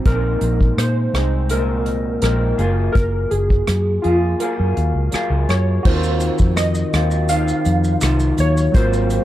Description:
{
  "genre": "indie pop, bedroom pop",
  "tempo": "83 BPM",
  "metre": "4/4",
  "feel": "straight",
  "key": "Eb dorian",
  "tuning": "A4 = 441 Hz",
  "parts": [
    { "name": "electric guitar through a small old amp", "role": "accompaniment", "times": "0.0-9.2 s", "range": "Ab2 to Ab4", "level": "-23 LUFS", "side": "left 1 dB", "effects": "lush chorus, warbly pitch drift" },
    { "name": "warbly lo-fi synth keys", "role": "melody", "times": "0.1-9.2 s", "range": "F4 to F5", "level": "-23 LUFS", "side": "equal", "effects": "ensemble chorus, analog delay" },
    { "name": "vintage muted fingered electric bass", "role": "bass", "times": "0.1-9.2 s", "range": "Gb1 to Bb2", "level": "-18 LUFS", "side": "equal", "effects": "none" },
    { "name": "unplugged drum kit", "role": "drums", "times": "0.1-9.2 s", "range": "crash cymbal, hi-hat, kick drum, rim click, shaker", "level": "-19 LUFS", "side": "equal", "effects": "none" },
    { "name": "tine electric piano", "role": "accompaniment", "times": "5.8-9.2 s", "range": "Gb3 to Bb4", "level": "-27 LUFS", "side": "right 2 dB", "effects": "overdrive, cassette tape" },
    { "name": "group handclap", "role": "percussion", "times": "6.6-8.2 s", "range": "none", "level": "-35 LUFS", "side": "right 4 dB", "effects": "none" }
  ],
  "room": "studio reverb",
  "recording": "dark, warm production",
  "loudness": "-15 LUFS",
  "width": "side -13 dB against mid",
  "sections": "0.0-5.9 A section; 5.9-9.2 B section",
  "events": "none",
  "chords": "0.1 Bb9sus4; 2.6 Gbmaj9; 5.9 Ebm69",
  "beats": "| 0.06 0.79 1.51 2.23 | 2.96 3.68 4.41 5.13 | 5.85 6.58 7.30 8.02 | 8.74"
}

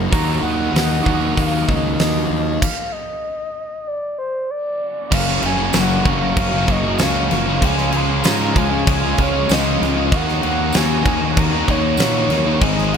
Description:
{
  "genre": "rock, shoegaze and dream pop",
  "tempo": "96 BPM",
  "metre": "4/4",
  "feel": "straight",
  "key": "Gb major",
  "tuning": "A4 = 440 Hz",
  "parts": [
    { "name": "analog string pad", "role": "sustained chords", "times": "0.0-13.0 s", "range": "Gb4 to Eb6", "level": "-30 LUFS", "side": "equal", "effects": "ensemble chorus" },
    { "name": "direct-recorded clean electric guitar", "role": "arpeggios", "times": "0.0-13.0 s", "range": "Eb3 to Gb4", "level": "-30 LUFS", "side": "left 11 dB", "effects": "ensemble chorus, analog delay" },
    { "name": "biting overdriven guitar", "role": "riff", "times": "0.0-13.0 s", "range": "Gb2 to Ab4", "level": "-22 LUFS", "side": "right 14 dB", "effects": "reverse reverb" },
    { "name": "thick fuzz guitar", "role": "riff", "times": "0.0-13.0 s", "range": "Gb2 to Eb4", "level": "-22 LUFS", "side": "left 10 dB", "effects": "distortion, lush chorus" },
    { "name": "fuzz fingered electric bass", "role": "bass", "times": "0.0-13.0 s", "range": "Gb1 to Bb2", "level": "-22 LUFS", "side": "equal", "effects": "overdrive" },
    { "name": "reedy FM lead", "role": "melody", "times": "0.1-13.0 s", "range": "C5 to C6", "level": "-24 LUFS", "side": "equal", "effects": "chorus, analog delay" },
    { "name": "huge arena drum kit", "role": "drums", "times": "0.1-13.0 s", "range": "crash cymbal, hi-hat, kick drum, snare drum", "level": "-20 LUFS", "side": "equal", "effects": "none" },
    { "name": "tambourine", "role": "percussion", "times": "5.7-12.1 s", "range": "none", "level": "-31 LUFS", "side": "right 9 dB", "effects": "none" }
  ],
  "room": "moderate studio reverb, RT60 0.8 s",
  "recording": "none",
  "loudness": "-15 LUFS",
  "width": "side -7 dB against mid",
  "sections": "0.0-5.1 A section; 5.1-13.0 B section",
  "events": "stop 2.6-5.1",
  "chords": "0.1 Ebm; 2.6 N.C.; 5.1 Gbmaj7; 7.6 Dbadd9; 10.1 Ebm7",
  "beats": "| 0.12 0.74 1.37 2.00 | 2.62 3.25 3.87 4.50 | 5.12 5.75 6.37 7.00 | 7.62 8.25 8.87 9.49 | 10.12 10.74 11.37 11.99 | 12.61"
}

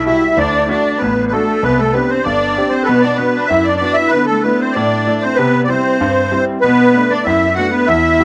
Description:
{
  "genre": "celtic folk",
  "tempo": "192 BPM",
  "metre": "4/4",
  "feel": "swing 55% on 8ths",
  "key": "unclear",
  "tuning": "A4 = 439 Hz",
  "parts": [
    { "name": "musette accordion", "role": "melody", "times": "0.0-8.2 s", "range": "A4 to F#5", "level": "-17 LUFS", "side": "equal", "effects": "none" },
    { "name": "rich cello", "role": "second line", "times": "0.0-8.2 s", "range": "A3 to F#4", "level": "-19 LUFS", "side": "equal", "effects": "none" },
    { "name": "bright concert grand piano", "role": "accompaniment", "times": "0.0-8.2 s", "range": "G1 to G4", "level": "-21 LUFS", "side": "equal", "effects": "none" }
  ],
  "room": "light reverb",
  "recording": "vinyl crackle",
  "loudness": "-14 LUFS",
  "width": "mono",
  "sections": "0.0-8.2 A section",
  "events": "none",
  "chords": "0.4 D; 1.6 Csus2; 2.9 Bm; 4.1 Dsus2; 5.4 C; 6.6 Bm7",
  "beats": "0.07 | 0.38 0.69 1.01 1.32 | 1.63 1.94 2.25 2.57 | 2.88 3.19 3.50 3.81 | 4.13 4.44 4.75 5.07 | 5.38 5.69 6.01 6.32 | 6.63 6.95 7.26 7.58 | 7.89 8.21"
}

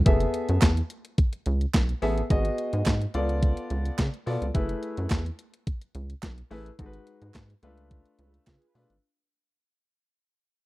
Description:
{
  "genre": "early-eighties boogie funk",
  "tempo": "107 BPM",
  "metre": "4/4",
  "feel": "straight",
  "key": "F# minor",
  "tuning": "A4 = 437 Hz",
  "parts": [
    { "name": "rubbery square bass", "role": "bass", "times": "0.0-9.0 s", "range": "F#1 to C#3", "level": "-27 LUFS", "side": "equal", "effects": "none" },
    { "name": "warm concert grand piano", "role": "accompaniment", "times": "0.1-8.9 s", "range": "G#3 to E5", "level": "-30 LUFS", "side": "left 1 dB", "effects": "none" },
    { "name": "clean 12-bit digital drum machine", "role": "drums", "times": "0.1-9.0 s", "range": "handclaps, hi-hat, kick drum, snare drum", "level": "-23 LUFS", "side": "equal", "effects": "overdrive" },
    { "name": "group handclap", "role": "percussion", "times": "0.6-8.6 s", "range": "none", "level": "-36 LUFS", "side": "right 8 dB", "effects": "none" },
    { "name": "mellow synth brass", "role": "second line", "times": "8.2-8.9 s", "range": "E#4 to B4", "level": "-72 LUFS", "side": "right 4 dB", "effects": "chorus" }
  ],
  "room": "digital ambience",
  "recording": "dry, close 1970s-style studio recording",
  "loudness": "-24 LUFS",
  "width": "side -19 dB against mid",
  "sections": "0.1-9.0 A section",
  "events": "fade-out 0.1-9.0; band accent 6.8-9.0",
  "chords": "0.1 F#m11; 2.3 G#m7; 3.1 C#7b9b13; 4.5 F#m11; 6.8 G#m7; 7.6 C#7b9b13",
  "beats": "| 0.06 0.62 1.18 1.74 | 2.30 2.86 3.42 3.98 | 4.54 5.11 5.67 6.23 | 6.79 7.35 7.91 8.47"
}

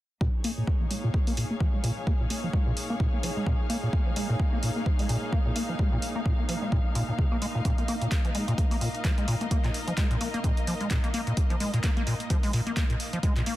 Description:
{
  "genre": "acid house",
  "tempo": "129 BPM",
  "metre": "4/4",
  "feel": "swing 57% on 16ths",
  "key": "Bb minor",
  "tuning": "A4 = 438 Hz",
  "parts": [
    { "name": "acid bass, square", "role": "riff", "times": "0.2-13.5 s", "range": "Bb2 to Bb3", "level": "-30 LUFS", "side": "equal", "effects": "overdrive, lush chorus, sidechain pumping, digital delay" },
    { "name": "electronic kick drum", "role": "drums", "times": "0.2-13.3 s", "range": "none", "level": "-26 LUFS", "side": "equal", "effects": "overdrive" },
    { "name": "muted studio string section", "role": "texture", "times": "0.2-13.6 s", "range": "Bb3 to F5", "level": "-35 LUFS", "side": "left 1 dB", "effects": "sidechain pumping" },
    { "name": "punchy analog drum machine", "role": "drums", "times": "0.4-13.6 s", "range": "handclaps, hi-hat", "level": "-36 LUFS", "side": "right 1 dB", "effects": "overdrive" }
  ],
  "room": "light reverb, digital ambience",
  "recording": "dense, heavily limited modern master",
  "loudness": "-25 LUFS",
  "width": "side -15 dB against mid",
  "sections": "0.2-13.6 A section",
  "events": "filter sweep on acid bass 0.2-13.6",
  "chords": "0.2 Bbm7",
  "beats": "| 0.21 0.67 1.14 1.60 | 2.07 2.53 3.00 3.46 | 3.93 4.39 4.86 5.33 | 5.79 6.25 6.72 7.18 | 7.65 8.12 8.58 9.05 | 9.51 9.98 10.44 10.91 | 11.37 11.84 12.30 12.77 | 13.23"
}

